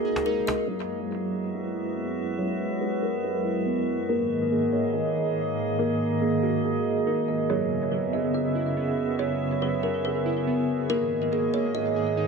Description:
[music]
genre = hip hop, atmospheric cloud-rap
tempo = 141 BPM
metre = 4/4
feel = half-time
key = unclear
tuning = A4 = 444 Hz
[part]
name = kalimba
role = melody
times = 0.0-12.1 s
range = F#4 to E5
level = -28 LUFS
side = equal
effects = low-pass filter, analog delay
[part]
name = warbly tape-like pad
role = sustained chords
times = 0.0-12.3 s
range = F#2 to E5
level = -28 LUFS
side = right 1 dB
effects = chorus, built-in reverb, tremolo, low-pass filter
[part]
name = glassy digital keys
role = arpeggios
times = 0.0-12.3 s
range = F#3 to G#4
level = -31 LUFS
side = right 2 dB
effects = chorus, low-pass filter, analog delay
[part]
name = cajon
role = drums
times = 0.0-0.6 s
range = none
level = -35 LUFS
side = equal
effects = analog delay
[part]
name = drifting glass-harmonics texture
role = texture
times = 0.0-12.3 s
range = A#3 to E5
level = -35 LUFS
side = right 1 dB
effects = chorus, built-in reverb
[sound]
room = light reverb, small room ambience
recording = echo-heavy mix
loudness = -24 LUFS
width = side -5 dB against mid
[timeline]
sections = 0.7-12.3 A section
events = break 0.0-0.7; filter sweep 0.7-12.3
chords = 0.0 G#sus2; 0.7 F#7sus4; 4.1 G#sus2; 7.5 F#7sus4; 10.9 G#sus2

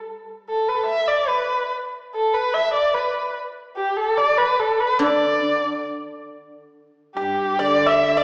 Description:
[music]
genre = chinese traditional, Chinese chamber ensemble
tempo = 72 BPM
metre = 2/4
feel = rubato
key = D zhi mode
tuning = A4 = 442 Hz
[part]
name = guzheng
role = accompaniment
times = 0.0-0.9, 5.0-7.6 s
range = D3 to G3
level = -24 LUFS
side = equal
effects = none
[part]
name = dark erhu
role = melody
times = 0.5-8.2 s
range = G4 to E5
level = -19 LUFS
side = equal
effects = none
[part]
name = clear cello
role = second line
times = 7.2-8.2 s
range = G2 to D3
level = -25 LUFS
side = equal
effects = none
[part]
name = pipa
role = second line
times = 7.2-8.2 s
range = G4 to E5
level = -23 LUFS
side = equal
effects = none
[sound]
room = wet recital hall reverb, RT60 1.7 s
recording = heard from further back in the room, small speaker sound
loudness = -18 LUFS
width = side -31 dB against mid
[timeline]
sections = 0.0-6.7 A section; 6.7-8.2 B section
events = none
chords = none

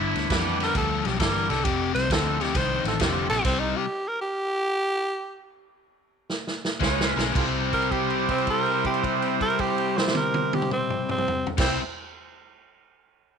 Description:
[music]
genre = electric blues shuffle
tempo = 107-134 BPM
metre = 4/4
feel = swing 67% on 8ths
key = C major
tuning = A4 = 438 Hz
[part]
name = overdriven harmonica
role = second line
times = 0.0-0.4, 6.8-11.8 s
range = E4 to Db5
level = -31 LUFS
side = right 15 dB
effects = none
[part]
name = biting overdriven guitar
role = riff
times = 0.0-3.8, 6.8-11.8 s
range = F2 to E4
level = -28 LUFS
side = left 14 dB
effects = none
[part]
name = vintage muted fingered electric bass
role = bass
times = 0.0-3.7, 6.8-11.8 s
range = F1 to F2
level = -31 LUFS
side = right 1 dB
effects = none
[part]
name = vintage drum kit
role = drums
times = 0.2-3.6, 6.3-11.7 s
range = crash cymbal, kick drum, ride cymbal, snare drum, toms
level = -29 LUFS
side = right 1 dB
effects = none
[part]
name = clear horn section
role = stabs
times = 0.3-3.4, 6.8-11.8 s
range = B3 to Cb5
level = -32 LUFS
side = right 13 dB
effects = none
[part]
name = growling tenor saxophone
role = melody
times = 0.6-11.8 s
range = C4 to C5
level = -26 LUFS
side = right 1 dB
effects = none
[sound]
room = light reverb, small room ambience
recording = 1960s-style stereo with parts hard left and right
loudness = -22 LUFS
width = side -6 dB against mid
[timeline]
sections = 0.0-7.4 A section; 7.4-11.8 B section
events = slowing down 3.4-7.4; stop 3.4-6.8; drum fill 6.3-7.4; held note 7.4-11.5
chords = 0.0 G; 1.7 F; 3.4 C5; 6.8 Db7; 7.4 C

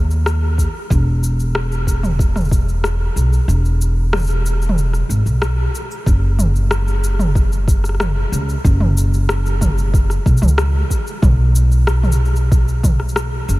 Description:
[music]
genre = folktronica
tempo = 93 BPM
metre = 4/4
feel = straight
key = unclear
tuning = A4 = 441 Hz
[part]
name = upright bass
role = bass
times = 0.0-13.6 s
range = E1 to D#2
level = -16 LUFS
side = equal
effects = none
[part]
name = organic electronic drum kit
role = drums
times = 0.1-13.6 s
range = cabasa, rim click, toms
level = -22 LUFS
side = equal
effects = overdrive, small room ambience
[part]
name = electronic kick drum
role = drums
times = 0.6-13.0 s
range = none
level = -15 LUFS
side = equal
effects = overdrive, small room ambience
[sound]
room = light reverb, digital ambience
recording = none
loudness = -14 LUFS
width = side -19 dB against mid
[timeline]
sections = 0.0-6.1 A section; 6.1-13.6 B section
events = kick drops out 3.5-6.1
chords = none

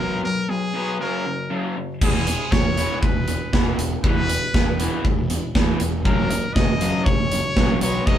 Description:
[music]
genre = indie rock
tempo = 119 BPM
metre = 4/4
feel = straight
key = E lydian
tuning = A4 = 439 Hz
[part]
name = brilliant trumpet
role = melody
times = 0.0-8.2 s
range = G#4 to D#5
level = -26 LUFS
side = left 1 dB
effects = none
[part]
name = raw garage guitar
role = riff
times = 0.0-8.2 s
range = E2 to B3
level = -25 LUFS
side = left 1 dB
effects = overdrive
[part]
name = fuzz picked electric bass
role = bass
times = 2.0-8.2 s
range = E1 to B1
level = -28 LUFS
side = equal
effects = overdrive
[part]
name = big rock drum kit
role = drums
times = 2.0-8.2 s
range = crash cymbal, hi-hat, kick drum, snare drum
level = -20 LUFS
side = equal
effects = none
[sound]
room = moderate studio reverb, RT60 0.5 s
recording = band playing live in one room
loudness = -19 LUFS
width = side -10 dB against mid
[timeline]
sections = 0.0-2.0 A section; 2.0-8.2 B section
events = break 0.0-2.0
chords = 0.0 B5; 1.0 F#; 2.0 E5; 6.1 F#6

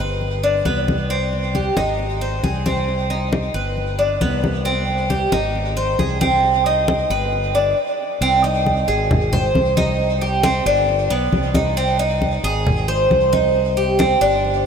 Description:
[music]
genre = latin, Cuban son and guajira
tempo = 135 BPM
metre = 4/4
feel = straight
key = C harmonic minor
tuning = A4 = 439 Hz
[part]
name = Cuban tres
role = arpeggios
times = 0.0-14.6 s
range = B3 to C5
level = -18 LUFS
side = right 1 dB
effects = diffuse ambient delay
[part]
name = fretless electric bass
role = bass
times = 0.0-14.6 s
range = G1 to C2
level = -23 LUFS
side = equal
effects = none
[part]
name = congas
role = percussion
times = 0.2-14.7 s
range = none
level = -24 LUFS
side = left 2 dB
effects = none
[sound]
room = wet huge ambient reverb, RT60 7.6 s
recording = dreamy mix soaked in reverb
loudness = -16 LUFS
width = side -7 dB against mid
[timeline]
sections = 0.0-8.2 A section; 8.2-14.7 B section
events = stop 7.8-8.2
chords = 0.2 G; 1.1 Cm; 2.0 Ab; 2.9 Cm; 3.8 G; 4.7 Cm; 5.5 Ab; 6.4 Cm; 7.3 G; 8.2 Ab; 10.0 Cm; 10.9 G; 11.8 Ab; 13.5 Cm

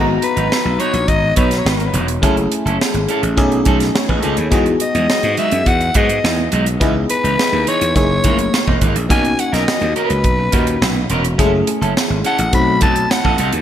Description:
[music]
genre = polished 1980s jazz-funk pop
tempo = 105 BPM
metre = 4/4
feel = straight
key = unclear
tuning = A4 = 440 Hz
[part]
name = FM electric piano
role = accompaniment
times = 0.0-13.6 s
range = A#2 to A#5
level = -20 LUFS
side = left 2 dB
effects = lush chorus
[part]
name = electric guitar at the edge of break-up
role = riff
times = 0.0-13.6 s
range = E3 to B4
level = -23 LUFS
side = right 4 dB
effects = wide subtle chorus
[part]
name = gritty slap bass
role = bass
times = 0.0-13.6 s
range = E1 to G#2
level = -19 LUFS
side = equal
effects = overdrive
[part]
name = growling soprano saxophone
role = melody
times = 0.2-13.5 s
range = A#4 to B5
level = -19 LUFS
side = left 2 dB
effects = none
[part]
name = crisp fusion drum kit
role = drums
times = 0.2-13.6 s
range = hi-hat, kick drum, snare drum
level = -19 LUFS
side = right 1 dB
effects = gated reverb
[sound]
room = moderate plate reverb, RT60 3.1 s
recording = bright 1980s-style digital production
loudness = -13 LUFS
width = side -10 dB against mid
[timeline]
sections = 0.0-13.6 A section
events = none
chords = 0.0 G#m7; 2.2 F#m7; 3.4 B13; 4.5 Emaj9; 6.8 C#m9; 8.0 F#13; 9.1 Bmaj9; 11.4 F#m7; 12.5 B7b9

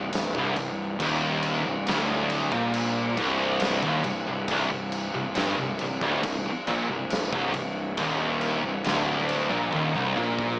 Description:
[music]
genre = stoner and doom metal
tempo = 69 BPM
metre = 4/4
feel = straight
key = C minor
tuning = A4 = 440 Hz
[part]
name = deep rumbling drone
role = sustained chords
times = 0.0-10.6 s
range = C3 to D4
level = -40 LUFS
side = equal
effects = none
[part]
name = overdriven electric guitar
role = riff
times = 0.0-10.6 s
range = C2 to Bb2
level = -29 LUFS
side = equal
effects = none
[part]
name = thick fuzz guitar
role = riff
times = 0.0-10.6 s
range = C2 to Bb2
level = -28 LUFS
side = equal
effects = distortion
[part]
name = fuzz picked electric bass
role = bass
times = 0.0-10.6 s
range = C1 to Bb1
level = -32 LUFS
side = equal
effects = overdrive
[part]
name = oversized low-tuned drum kit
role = drums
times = 0.1-10.6 s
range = crash cymbal, kick drum, snare drum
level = -30 LUFS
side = equal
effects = none
[sound]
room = light reverb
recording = small speaker sound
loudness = -24 LUFS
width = side -24 dB against mid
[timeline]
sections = 0.0-10.6 A section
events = drum fill 9.7-10.6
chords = 0.0 Cm

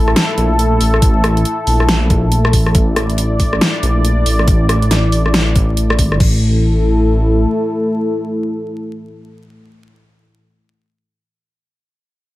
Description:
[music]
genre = deep dubstep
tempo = 139 BPM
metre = 4/4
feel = swing 61% on 16ths, half-time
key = unclear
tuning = A4 = 441 Hz
[part]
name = dark analog pad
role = sustained chords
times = 0.0-10.4 s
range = A3 to D5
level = -18 LUFS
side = left 1 dB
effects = chorus
[part]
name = dark detuned saw bass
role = bass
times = 0.0-7.5 s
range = A1 to Bb1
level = -14 LUFS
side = equal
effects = none
[part]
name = dubstep drum kit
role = drums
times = 0.1-6.3 s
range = crash cymbal, hi-hat, rim click, snare drum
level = -18 LUFS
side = equal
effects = overdrive
[part]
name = electronic kick drum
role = drums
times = 1.0-6.3 s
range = none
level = -14 LUFS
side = equal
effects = none
[sound]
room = light reverb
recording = vinyl crackle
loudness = -12 LUFS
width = side -17 dB against mid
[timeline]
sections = 0.0-6.2 A section; 6.2-9.7 B section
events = drop 0.0-6.2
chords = 0.0 A5

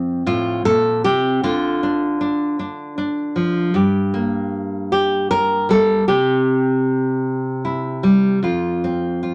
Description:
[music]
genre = folk, solo fingerstyle acoustic guitar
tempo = 51 BPM (dotted quarters)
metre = 6/8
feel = straight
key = F major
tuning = A4 = 441 Hz
[part]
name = nylon-string guitar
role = solo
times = 0.0-9.3 s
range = F2 to Bb4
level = -19 LUFS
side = equal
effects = none
[sound]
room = moderate studio reverb, RT60 0.7 s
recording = none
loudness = -19 LUFS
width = mono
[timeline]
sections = 0.0-9.3 A section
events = none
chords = 0.0 F; 1.4 Dm; 3.7 Gm; 6.1 C; 8.4 F5

